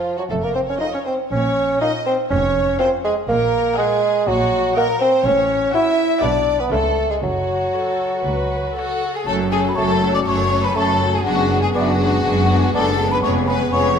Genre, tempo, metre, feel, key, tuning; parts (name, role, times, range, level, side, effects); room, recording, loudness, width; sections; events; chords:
cinematic, playful, whimsical film cue; 121 BPM; 4/4; straight; F# minor from 5.2 s; A4 = 440 Hz
rich studio violin section; melody; 0.0-14.0 s; F#4 to Gb5; -25 LUFS; left 4 dB
rich studio violin section; second line; 0.0-14.0 s; C#4 to E5; -24 LUFS; left 3 dB
rich studio viola section; accompaniment; 0.0-14.0 s; F#3 to Eb5; -27 LUFS; right 1 dB
warm bassoon; accompaniment; 0.0-13.9 s; F3 to E4; -19 LUFS; right 1 dB
rich studio cello section; bass; 0.3-14.0 s; C#2 to C#3; -25 LUFS; right 1 dB
rich studio double bass section; bass; 0.3-14.0 s; F1 to C#2; -26 LUFS; right 1 dB
mellow hollow concert flute; second line; 8.8-14.0 s; E5 to D6; -23 LUFS; left 1 dB
mellow French horn section; sustained chords; 9.3-14.0 s; B3 to G#4; -26 LUFS; left 4 dB
warm oboe; second line; 9.8-13.9 s; C#5 to D5; -29 LUFS; equal
wet scoring stage reverb, RT60 1.7 s; minimal, uncompressed stereo recording; -16 LUFS; side -7 dB against mid
0.0-9.3 A section; 9.3-14.0 B section
0.3 F; 1.3 Bbm; 3.3 Ebm/Bb; 5.2 F#m/A; 6.2 Bm; 6.7 C#7; 7.2 F#m; 11.3 G#m7b5/F#; 13.2 C#7/E#